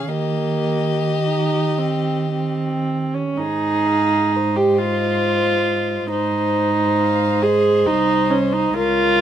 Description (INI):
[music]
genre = classical, slow romantic movement for string quartet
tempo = 52-69 BPM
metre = 3/4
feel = rubato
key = Ab major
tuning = A4 = 440 Hz
[part]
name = dark violin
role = melody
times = 0.0-9.2 s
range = C5 to F5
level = -30 LUFS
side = left 7 dB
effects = none
[part]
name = dark violin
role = second line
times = 0.0-9.2 s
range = G4 to C5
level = -24 LUFS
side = left 4 dB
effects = none
[part]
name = dark viola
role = accompaniment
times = 0.0-9.2 s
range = Bb3 to Ab4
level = -19 LUFS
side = right 2 dB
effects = none
[part]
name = dark cello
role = bass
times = 0.0-9.2 s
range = C2 to Eb3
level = -24 LUFS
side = right 4 dB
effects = none
[sound]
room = light reverb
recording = close, detailed microphones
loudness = -17 LUFS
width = side -10 dB against mid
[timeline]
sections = 0.0-3.4 A section; 3.4-9.2 B section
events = none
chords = 0.1 Eb; 3.4 Ab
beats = | 0.09 1.24 2.33 | 3.39 4.33 5.23 | 6.11 6.98 7.86 | 8.75